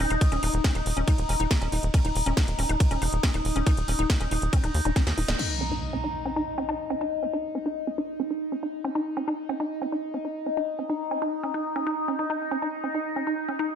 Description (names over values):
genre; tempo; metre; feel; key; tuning
psychedelic trance; 139 BPM; 4/4; straight; unclear; A4 = 440 Hz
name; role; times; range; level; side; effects
overtone-sweeping drone; sustained chords; 0.0-13.8 s; Eb4; -30 LUFS; left 2 dB; chorus, built-in reverb, phaser, sidechain pumping
woody wave-folded pluck; riff; 0.0-13.7 s; Db4 to Eb5; -31 LUFS; moving between left 5 dB and right 3 dB; chorus, auto-pan, sidechain pumping, tape echo
tight sequencer bass; bass; 0.0-5.3 s; Eb1 to Eb2; -27 LUFS; equal; none
drum and bass drum kit; drums; 0.0-5.5 s; crash cymbal, hi-hat, ride cymbal, snare drum; -32 LUFS; equal; none
electronic kick drum; drums; 0.2-5.0 s; none; -23 LUFS; equal; none
impact; sound effects; 5.4-7.1 s; none; -34 LUFS; equal; none
room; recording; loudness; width
light reverb; none; -24 LUFS; side -8 dB against mid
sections
0.0-5.4 A section; 5.4-13.8 B section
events
drop 0.0-5.4; drum fill 5.0-5.4; band accent 5.3; impact 5.4-7.1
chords
0.0 Eb5; 5.4 N.C.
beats
| 0.21 0.64 1.07 1.51 | 1.94 2.37 2.80 3.23 | 3.67 4.10 4.53 4.96 | 5.39 5.82 6.25 6.69 | 7.12 7.55 7.98 8.41 | 8.85 9.28 9.71 10.14 | 10.57 11.00 11.44 11.87 | 12.30 12.73 13.16 13.59